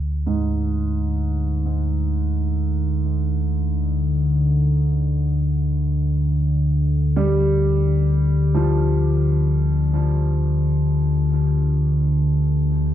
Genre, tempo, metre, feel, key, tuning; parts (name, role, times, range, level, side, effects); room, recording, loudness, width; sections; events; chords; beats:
dark ambient drone; free time; A4 = 440 Hz
dark grand piano; arpeggios; 0.0-12.9 s; G#2 to G3; -28 LUFS; right 3 dB; tape echo
deep rumbling drone; drone; 0.0-12.9 s; D2 to D3; -18 LUFS; equal; built-in reverb
light reverb, small room ambience; echo-heavy mix; -18 LUFS; side -11 dB against mid
0.0-12.9 A section
fade-out on grand piano 0.0-12.9
0.0 Dm
free time